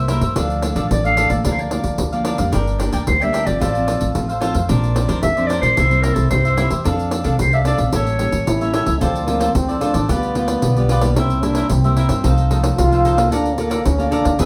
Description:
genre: samba and choro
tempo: 111 BPM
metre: 4/4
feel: straight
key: F major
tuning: A4 = 440 Hz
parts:
  - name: cavaquinho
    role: accompaniment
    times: 0.0-14.5 s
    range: D4 to Bb5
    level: -26 LUFS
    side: equal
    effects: none
  - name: nylon-string guitar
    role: accompaniment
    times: 0.0-14.5 s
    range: G2 to A4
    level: -27 LUFS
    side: equal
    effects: none
  - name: upright bass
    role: bass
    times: 0.0-14.5 s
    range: G1 to G2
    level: -22 LUFS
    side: equal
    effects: none
  - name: pandeiro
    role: percussion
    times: 0.1-14.5 s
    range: none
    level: -27 LUFS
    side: equal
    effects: none
  - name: warm clarinet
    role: melody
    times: 0.9-8.7 s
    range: A4 to F5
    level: -22 LUFS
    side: equal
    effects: plate reverb
  - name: mellow trombone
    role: second line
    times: 8.5-14.5 s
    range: Bb3 to F4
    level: -23 LUFS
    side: equal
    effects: none
room: moderate studio reverb, RT60 0.7 s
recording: heard from further back in the room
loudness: -18 LUFS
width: mono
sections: 0.0-9.0 A section; 9.0-14.5 B section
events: trombone solo 9.0-14.5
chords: 0.4 Dm; 1.4 Bb/D; 2.5 Gm; 3.6 F/A; 4.7 Bbadd9; 5.8 C; 6.8 F6; 7.9 A7b9; 9.0 Dm9; 10.1 G7/D; 11.2 C7; 12.2 F7/C; 13.3 Bbmaj7/D

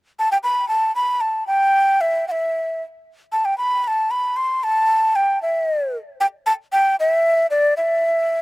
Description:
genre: andean folk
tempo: 77 BPM (dotted quarters)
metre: 6/8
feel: straight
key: E minor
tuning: A4 = 440 Hz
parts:
  - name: breathy large quena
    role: solo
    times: 0.2-8.4 s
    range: D5 to C6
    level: -17 LUFS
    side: equal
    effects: none
room: little or no reverb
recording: recorded outdoors, with no room sound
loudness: -17 LUFS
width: side -22 dB against mid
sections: 0.0-6.2 A section; 6.2-8.4 B section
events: none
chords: none

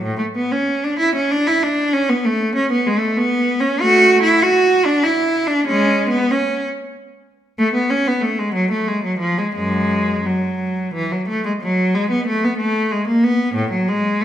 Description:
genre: classical, baroque-style suite movement for unaccompanied cello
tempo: 94 BPM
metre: 3/4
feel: rubato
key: A major, F# minor from 3.8 s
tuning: A4 = 439 Hz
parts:
  - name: clear cello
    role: solo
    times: 0.0-14.2 s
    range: F#2 to F#4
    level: -15 LUFS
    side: equal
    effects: none
room: wet recital hall reverb, RT60 1.5 s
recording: minimal, uncompressed stereo recording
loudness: -15 LUFS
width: side -11 dB against mid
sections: 0.0-11.6 A section; 11.6-14.2 B section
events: none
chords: none

